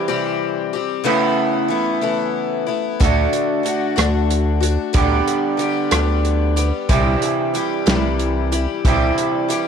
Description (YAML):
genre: folk rock and heartland rock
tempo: 62 BPM (dotted quarters)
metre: 6/8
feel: straight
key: unclear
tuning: A4 = 442 Hz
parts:
  - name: picked twelve-string acoustic guitar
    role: accompaniment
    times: 0.0-9.7 s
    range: C3 to G4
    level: -21 LUFS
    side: left 12 dB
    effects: none
  - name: electric guitar through a small old amp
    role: riff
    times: 0.0-9.7 s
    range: C3 to G4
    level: -22 LUFS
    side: right 10 dB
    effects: none
  - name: rubbery square bass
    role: bass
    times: 3.0-9.1 s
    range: C2 to D2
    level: -19 LUFS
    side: equal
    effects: none
  - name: natural country drum kit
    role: drums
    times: 3.0-9.7 s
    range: hi-hat, kick drum, rim click, snare drum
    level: -20 LUFS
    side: right 1 dB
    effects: none
room: small room ambience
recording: 1960s-style stereo with parts hard left and right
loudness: -16 LUFS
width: side -7 dB against mid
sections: 0.0-9.7 A section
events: none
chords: 0.0 C; 1.1 Aadd9/C#; 3.0 D; 5.0 G/D; 6.9 C